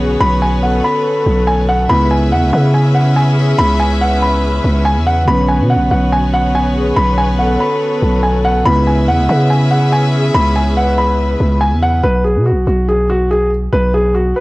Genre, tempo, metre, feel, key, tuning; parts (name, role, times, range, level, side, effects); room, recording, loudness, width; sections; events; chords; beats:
hip hop; 142 BPM; 4/4; half-time; C# phrygian; A4 = 440 Hz
breathy flute-like synth lead; second line; 0.0-11.6 s; G#4 to B4; -21 LUFS; left 2 dB; chorus, analog delay
mellow tine electric piano; accompaniment; 0.0-12.1 s; C#3 to E4; -20 LUFS; right 2 dB
warm chamber string section; sustained chords; 0.0-12.0 s; B3 to E5; -21 LUFS; left 1 dB
growling 808-style bass; bass; 0.0-14.3 s; B1 to C#3; -14 LUFS; equal
dark grand piano; melody; 0.2-14.4 s; F#4 to B5; -16 LUFS; equal; analog delay
small room ambience; dry, gritty hardware recording, cassette tape; -11 LUFS; side -20 dB against mid
0.0-12.0 A section; 12.0-14.4 B section
0.0 Bmadd9; 1.9 C#m7; 5.3 Bmadd9; 8.7 C#m7; 12.0 G#m7/B
| 0.21 0.63 1.05 1.47 | 1.90 2.32 2.74 3.16 | 3.59 4.01 4.43 4.85 | 5.28 5.70 6.12 6.54 | 6.97 7.39 7.81 8.23 | 8.66 9.08 9.50 9.93 | 10.35 10.77 11.19 11.62 | 12.04 12.46 12.88 13.30 | 13.73 14.15